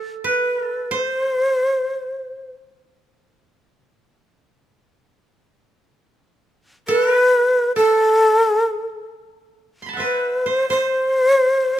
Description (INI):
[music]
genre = japanese traditional, Japanese chamber music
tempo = 64-72 BPM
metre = 2/4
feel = rubato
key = A kumoi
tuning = A4 = 439 Hz
[part]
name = koto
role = second line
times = 0.0-2.6, 6.9-11.8 s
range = A4 to C6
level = -24 LUFS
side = right 4 dB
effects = none
[part]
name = breathy mellow shakuhachi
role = melody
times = 0.3-2.5, 6.9-11.8 s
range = A4 to C5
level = -16 LUFS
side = equal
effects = none
[sound]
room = light reverb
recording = close, detailed microphones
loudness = -16 LUFS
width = side -12 dB against mid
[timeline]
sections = 0.0-10.0 A section; 10.0-11.8 B section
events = none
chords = none